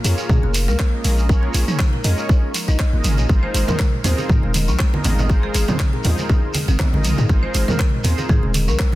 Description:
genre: afro house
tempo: 120 BPM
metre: 4/4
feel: swing 55% on 16ths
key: unclear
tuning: A4 = 441 Hz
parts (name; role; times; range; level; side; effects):
- marimba with hard mallets; melody; 0.0-8.8 s; Ab4 to Eb5; -30 LUFS; left 1 dB; vintage 12-bit sampler grit, digital delay
- warm analog pad; sustained chords; 0.0-9.0 s; Ab3 to Bb4; -32 LUFS; left 2 dB; chorus, sidechain pumping
- kalimba; arpeggios; 0.0-8.9 s; C3 to Bb4; -29 LUFS; left 1 dB; sidechain pumping, digital delay
- mellow synth brass; stabs; 0.0-9.0 s; Db4 to Eb5; -29 LUFS; right 1 dB; chorus, sidechain pumping, digital delay
- warm 808-style bass; bass; 0.0-8.8 s; Eb1 to Bb2; -19 LUFS; equal; tube saturation, sidechain pumping
- house drum kit; drums; 0.0-8.9 s; handclaps, hi-hat, rim click, toms; -25 LUFS; right 1 dB; none
- shekere; percussion; 0.0-8.9 s; none; -30 LUFS; right 2 dB; none
- electronic kick drum; drums; 0.3-8.9 s; none; -17 LUFS; equal; none
- congas; percussion; 3.3-9.0 s; none; -24 LUFS; right 2 dB; none
room: studio reverb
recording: dense, heavily limited modern master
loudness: -16 LUFS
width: side -16 dB against mid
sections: 0.0-9.0 A section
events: none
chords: 0.0 Bbm7; 3.3 Ab69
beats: 0.29 0.80 | 1.29 1.79 2.29 2.79 | 3.29 3.79 4.29 4.79 | 5.29 5.79 6.29 6.79 | 7.29 7.79 8.29 8.79

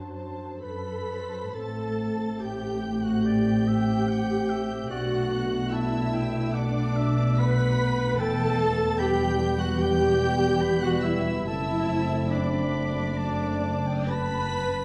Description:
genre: cinematic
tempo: 73 BPM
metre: 4/4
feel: uneven beats, rubato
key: A dorian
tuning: A4 = 440 Hz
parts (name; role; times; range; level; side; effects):
- warm clarinet; second line; 0.0-14.8 s; D4 to B4; -36 LUFS; equal; none
- warm symphonic violin section; second line; 0.0-14.8 s; C5 to B5; -38 LUFS; equal; none
- warm symphonic viola section; accompaniment; 0.0-14.8 s; F#3 to B4; -33 LUFS; equal; none
- dark symphonic cello section; bass; 0.0-14.7 s; E2 to B2; -32 LUFS; equal; none
- warm symphonic violin section; melody; 0.6-14.8 s; D6 to B6; -41 LUFS; equal; none
- dark French horn section; sustained chords; 1.6-14.6 s; G3 to D4; -34 LUFS; equal; none
- warm symphonic double bass section; bass; 1.6-14.7 s; E1 to B1; -32 LUFS; equal; none
- clear oboe; second line; 3.3-14.8 s; D5 to B5; -38 LUFS; equal; none
room: wet scoring stage reverb, RT60 1.7 s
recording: dark, warm production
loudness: -26 LUFS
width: mono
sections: 0.0-1.6 A section; 1.6-14.8 A section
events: none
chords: 0.0 D7/F#; 1.6 Am7; 4.9 Bm7; 8.2 Em; 11.5 D7/F#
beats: 0.64 | 1.56 2.42 3.26 4.09 | 4.91 5.74 6.54 7.40 | 8.21 8.99 9.80 10.62 | 11.46 12.31 13.17 14.08

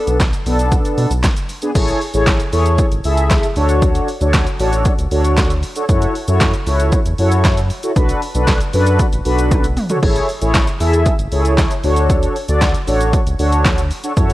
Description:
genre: dance-pop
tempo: 116 BPM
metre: 4/4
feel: straight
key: unclear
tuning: A4 = 440 Hz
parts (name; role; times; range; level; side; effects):
- mellow synth brass; accompaniment; 0.0-14.3 s; B3 to E5; -18 LUFS; equal; chorus, sidechain pumping
- round analog bass; bass; 0.1-14.3 s; G#1 to B2; -17 LUFS; equal; sidechain pumping
- deep house drum kit; drums; 0.1-14.3 s; crash cymbal, handclaps, hi-hat, kick drum, shaker, snare drum, toms; -17 LUFS; equal; overdrive
room: light reverb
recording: worn, warbling old tape, cassette tape, warbly pitch drift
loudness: -13 LUFS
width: side -16 dB against mid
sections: 0.0-1.8 A section; 1.8-14.3 B section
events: drum fill 9.5-10.0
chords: 0.0 Bm7; 1.8 Amaj7; 3.6 Dmaj7; 5.9 F#m7; 8.0 Bm7; 10.0 Amaj7; 11.8 Dmaj7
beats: 0.20 0.72 1.24 | 1.75 2.27 2.79 3.31 | 3.82 4.34 4.86 5.37 | 5.89 6.41 6.92 7.44 | 7.96 8.48 8.99 9.51 | 10.03 10.55 11.06 11.58 | 12.10 12.62 13.13 13.65 | 14.17

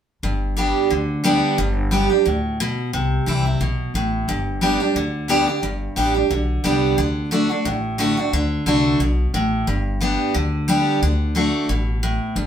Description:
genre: bluegrass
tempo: 178 BPM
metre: 4/4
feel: swing 54% on 8ths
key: G major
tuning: A4 = 440 Hz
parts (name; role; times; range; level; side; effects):
- picked steel-string acoustic guitar; accompaniment; 0.2-12.5 s; G2 to G4; -19 LUFS; right 1 dB; none
- upright bass; bass; 0.2-12.5 s; G1 to D2; -23 LUFS; left 1 dB; none
room: wet studio reverb, RT60 0.6 s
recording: band playing live in one room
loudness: -18 LUFS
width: side -9 dB against mid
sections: 0.2-11.0 A section; 11.0-12.5 B section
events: none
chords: 0.2 G; 2.9 C; 4.3 G; 7.0 D; 9.7 G; 11.0 D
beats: | 0.23 0.57 0.91 1.24 | 1.58 1.92 2.26 2.59 | 2.93 3.27 3.61 3.94 | 4.28 4.62 4.96 5.29 | 5.63 5.97 6.30 6.64 | 6.98 7.32 7.65 7.99 | 8.33 8.66 9.00 9.34 | 9.67 10.01 10.35 10.68 | 11.02 11.36 11.69 12.03 | 12.36

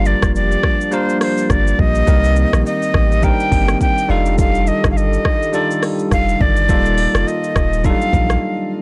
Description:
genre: afrobeats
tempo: 104 BPM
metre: 4/4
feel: swing 58% on 16ths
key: F mixolydian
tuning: A4 = 441 Hz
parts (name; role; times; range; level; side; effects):
- breathy bright jazz flute; melody; 0.0-8.7 s; C5 to G5; -22 LUFS; equal; digital delay, plate reverb
- bell-like tine electric piano; accompaniment; 0.0-8.8 s; F3 to Bb4; -23 LUFS; equal; plate reverb
- hollow soft pad; sustained chords; 0.0-8.8 s; Eb3 to A4; -29 LUFS; equal; chorus
- punchy sub bass; bass; 0.0-8.4 s; Eb1 to C2; -20 LUFS; equal; none
- afro-pop drum kit; drums; 0.1-8.4 s; hi-hat, kick drum, rim click, shaker; -21 LUFS; equal; vintage 12-bit sampler grit, soft clipping on snare
room: little or no reverb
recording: blown-out, overdriven recording, overdrive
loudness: -16 LUFS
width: mono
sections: 0.0-8.8 A section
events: break 8.4-8.8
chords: 0.0 Gm7; 2.1 Cm9; 4.1 F13; 6.7 Ebmaj9#11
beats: 0.35 0.92 1.50 | 2.08 2.65 3.23 3.81 | 4.38 4.96 5.54 6.12 | 6.69 7.27 7.85 8.42

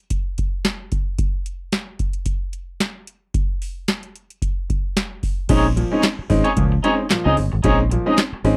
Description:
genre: funk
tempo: 112 BPM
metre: 4/4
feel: swing 56% on 16ths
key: Bb minor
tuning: A4 = 440 Hz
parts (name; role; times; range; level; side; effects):
- booming analog drum machine; drums; 0.1-8.6 s; crash cymbal, handclaps, hi-hat, kick drum, snare drum; -24 LUFS; equal; none
- twangy electric guitar; accompaniment; 5.5-8.4 s; Eb4 to Eb5; -24 LUFS; equal; tremolo
- bright upright piano; stabs; 5.5-8.6 s; Bb2 to Eb4; -22 LUFS; equal; none
- fingered electric bass; bass; 5.5-8.6 s; G1 to Db2; -22 LUFS; equal; none
room: little or no reverb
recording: dry, close 1970s-style studio recording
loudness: -21 LUFS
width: mono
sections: 0.0-5.5 A section; 5.5-8.6 B section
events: none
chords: 0.0 N.C.; 5.5 Bbm11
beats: 0.11 0.65 | 1.19 1.73 2.27 2.80 | 3.34 3.88 4.42 4.96 | 5.49 6.03 6.57 7.10 | 7.64 8.18

